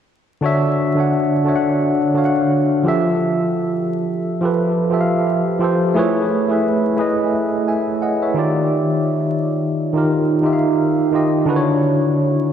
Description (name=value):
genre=R&B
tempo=87 BPM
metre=4/4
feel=swing 58% on 16ths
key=unclear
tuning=A4 = 438 Hz
part: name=tine electric piano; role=solo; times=0.4-12.5 s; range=D3 to G#5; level=-15 LUFS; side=equal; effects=medium stereo tremolo, ping-pong delay
room=wet lush hall reverb, RT60 2.8 s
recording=dreamy mix soaked in reverb, vinyl crackle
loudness=-15 LUFS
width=side -8 dB against mid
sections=0.4-11.5 A section; 11.5-12.5 B section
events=none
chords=0.4 Dmaj9; 2.8 Fmaj9; 5.9 Amaj9; 8.4 Ebmaj9; 11.5 Dmaj9